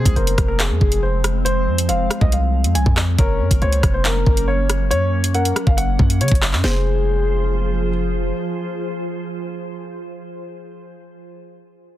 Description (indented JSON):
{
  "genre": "hip hop, drill",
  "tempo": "139 BPM",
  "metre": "4/4",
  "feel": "half-time",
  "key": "F phrygian",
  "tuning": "A4 = 439 Hz",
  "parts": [
    { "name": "dark grand piano", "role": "melody", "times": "0.0-7.9 s", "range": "Ab4 to Ab5", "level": "-25 LUFS", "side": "equal", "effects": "none" },
    { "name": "soft octave-layered synth lead", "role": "second line", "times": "0.0-7.9 s", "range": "Ab4 to Db5", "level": "-27 LUFS", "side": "left 6 dB", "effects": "chorus, tape echo" },
    { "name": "glassy FM pad", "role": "sustained chords", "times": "0.0-10.9 s", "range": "F3 to C5", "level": "-26 LUFS", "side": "right 1 dB", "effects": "ensemble chorus, built-in reverb" },
    { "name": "hard-hitting 808-style bass", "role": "bass", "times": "0.0-8.3 s", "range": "F1 to Db3", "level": "-19 LUFS", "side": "equal", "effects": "none" },
    { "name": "drill drum kit", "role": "drums", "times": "0.1-6.7 s", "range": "handclaps, hi-hat, kick drum, rim click, snare drum", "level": "-18 LUFS", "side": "equal", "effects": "none" }
  ],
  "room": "digital ambience",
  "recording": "dense, heavily limited modern master",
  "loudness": "-16 LUFS",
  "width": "side -13 dB against mid",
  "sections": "0.0-6.6 A section; 6.6-10.1 B section",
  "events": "none",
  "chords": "0.0 Fm; 3.2 Gb; 6.6 Fm",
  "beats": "0.16 0.60 1.03 | 1.46 1.89 2.32 2.75 | 3.19 3.62 4.05 4.48 | 4.91 5.34 5.78 6.21 | 6.64 7.07 7.50 7.93 | 8.37 8.80 9.23 9.66"
}